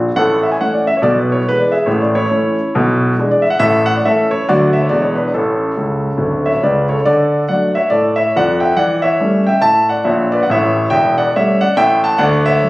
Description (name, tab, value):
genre	jazz, stride piano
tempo	139 BPM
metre	4/4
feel	swing 61% on 8ths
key	A major, D major from 7.0 s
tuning	A4 = 441 Hz
part	warm grand piano	solo	0.0-12.7 s	D1 to A5	-12 LUFS	equal	none
room	moderate club reverb, RT60 0.7 s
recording	recorded on a phone in the room, studio reverb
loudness	-12 LUFS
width	side -18 dB against mid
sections	0.0-7.0 A section; 7.0-12.7 B section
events	grand piano fill 5.8-7.0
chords	0.2 A; 1.0 E/B; 1.9 A; 2.7 E7/B; 3.6 A; 4.5 D; 4.9 E7; 5.3 A; 7.0 D; 8.8 A7/E; 10.5 A7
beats	| 0.16 0.59 1.02 1.45 | 1.88 2.31 2.74 3.17 | 3.60 4.03 4.46 4.89 | 5.32 5.75 6.18 6.62 | 7.05 7.48 7.91 8.34 | 8.77 9.20 9.63 10.06 | 10.49 10.92 11.35 11.78 | 12.21 12.64